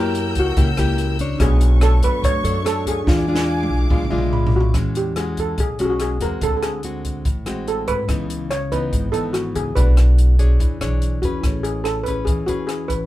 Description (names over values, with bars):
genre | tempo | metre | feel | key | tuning
bossa nova | 144 BPM | 4/4 | straight | E major from 4.7 s | A4 = 439 Hz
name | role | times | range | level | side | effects
steel pan | melody | 0.0-13.1 s | F#4 to C#5 | -24 LUFS | right 1 dB | none
breathy jazz flute | second line | 0.0-4.3 s | F#5 to C#6 | -30 LUFS | right 1 dB | none
bell-like tine electric piano | accompaniment | 0.0-4.8, 11.4-13.1 s | A3 to B5 | -29 LUFS | right 2 dB | none
nylon-string guitar | accompaniment | 0.0-13.1 s | G#2 to C#5 | -25 LUFS | left 2 dB | none
warm symphonic string section | sustained chords | 0.0-4.7 s | A3 to G6 | -31 LUFS | left 2 dB | none
upright bass | bass | 0.0-13.1 s | G#1 to G#2 | -20 LUFS | equal | none
compact cocktail drum kit | drums | 0.1-13.0 s | hi-hat, kick drum, rim click, snare drum, toms | -22 LUFS | equal | none
room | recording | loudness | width
moderate studio reverb, RT60 0.5 s | band playing live in one room | -17 LUFS | side -15 dB against mid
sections
0.0-4.7 A section; 4.7-13.1 B section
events
drum fill 3.1-4.7; tine electric piano fill 3.9-4.7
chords
0.0 F#7b9; 1.4 Bm9; 3.1 E7b9; 4.7 E69; 6.4 D7#11; 8.1 C#m9; 9.8 Bm7; 10.6 E6; 11.4 Amaj9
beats
0.16 0.57 0.99 | 1.41 1.83 2.24 2.66 | 3.08 3.49 3.91 4.33 | 4.75 5.16 5.58 6.00 | 6.42 6.84 7.25 7.67 | 8.09 8.51 8.93 9.35 | 9.76 10.18 10.60 11.02 | 11.44 11.85 12.27 12.69